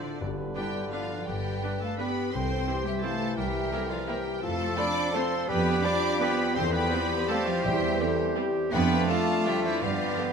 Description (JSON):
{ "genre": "classical", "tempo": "168 BPM", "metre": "3/4", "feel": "uneven beats, rubato", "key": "C major", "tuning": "A4 = 440 Hz", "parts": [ { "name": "warm symphonic violin section", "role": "melody", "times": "0.0-10.3 s", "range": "D5 to D6", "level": "-36 LUFS", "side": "left 2 dB", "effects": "none" }, { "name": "mellow cor anglais", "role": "second line", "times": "0.0-10.3 s", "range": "A4 to D5", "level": "-40 LUFS", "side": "right 4 dB", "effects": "none" }, { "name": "mellow hollow silver concert flute", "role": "second line", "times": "0.0-10.3 s", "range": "A4 to B5", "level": "-36 LUFS", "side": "left 1 dB", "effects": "none" }, { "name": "rich symphonic violin section", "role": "second line", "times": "0.0-10.3 s", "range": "D4 to D5", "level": "-36 LUFS", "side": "left 2 dB", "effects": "none" }, { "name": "warm clarinet", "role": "second line", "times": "0.0-10.3 s", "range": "D4 to D5", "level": "-38 LUFS", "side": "left 1 dB", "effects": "none" }, { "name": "mellow bassoon", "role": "accompaniment", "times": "0.0-10.3 s", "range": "D3 to B3", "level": "-35 LUFS", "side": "right 1 dB", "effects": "none" }, { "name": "mellow French horn section", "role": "sustained chords", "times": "0.0-10.3 s", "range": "D4 to C5", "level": "-34 LUFS", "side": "left 5 dB", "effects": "none" }, { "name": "concert harp", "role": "arpeggios", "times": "0.0-10.3 s", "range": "E2 to D5", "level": "-38 LUFS", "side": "left 10 dB", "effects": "none" }, { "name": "warm symphonic cello section", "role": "bass", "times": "0.0-10.3 s", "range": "D3 to D4", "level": "-34 LUFS", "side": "right 4 dB", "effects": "none" }, { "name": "clear symphonic double bass section", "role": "bass", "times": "0.2-10.1 s", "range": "G1 to G2", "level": "-32 LUFS", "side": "right 4 dB", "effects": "none" }, { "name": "timpani", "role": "percussion", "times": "0.2-0.7 s", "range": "G2", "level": "-40 LUFS", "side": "left 3 dB", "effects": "none" }, { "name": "clear symphonic viola section", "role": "accompaniment", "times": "0.6-10.3 s", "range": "D3 to F4", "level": "-40 LUFS", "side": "right 2 dB", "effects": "none" }, { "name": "warm trombone section", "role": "sustained chords", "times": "0.6-10.3 s", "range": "D3 to D4", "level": "-38 LUFS", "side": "right 6 dB", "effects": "none" }, { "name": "clear trumpet", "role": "stabs", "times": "0.6-10.3 s", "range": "F4 to C5", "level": "-38 LUFS", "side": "right 1 dB", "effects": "none" } ], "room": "moderate scoring stage reverb, RT60 1.6 s", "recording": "none", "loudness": "-25 LUFS", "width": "side -6 dB against mid", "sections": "0.0-10.3 A section", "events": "none", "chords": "0.2 G; 2.3 C; 3.4 C7; 4.4 F; 5.5 G7/F; 6.6 C/E; 8.7 Dm/F; 9.8 G7", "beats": "| 0.21 0.56 0.93 | 1.28 1.63 1.99 | 2.33 2.67 3.03 | 3.37 3.72 4.08 | 4.43 4.78 5.14 | 5.49 5.84 6.21 | 6.56 6.92 7.30 | 7.65 8.01 8.38 | 8.73 9.10 9.47 | 9.83 10.19" }